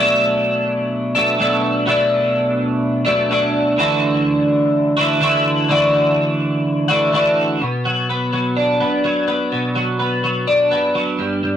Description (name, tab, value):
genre	rock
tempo	126 BPM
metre	4/4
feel	straight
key	unclear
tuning	A4 = 439 Hz
part	twelve-string electric guitar	solo	0.0-11.6 s	G2 to F#4	-15 LUFS	equal	rotary speaker
room	moderate studio reverb, RT60 0.6 s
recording	rough rehearsal-room recording, warm saturation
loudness	-15 LUFS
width	side -9 dB against mid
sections	0.0-7.6 A section; 7.6-11.6 B section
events	none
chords	0.0 Bm7; 3.8 Dadd9; 7.6 Bm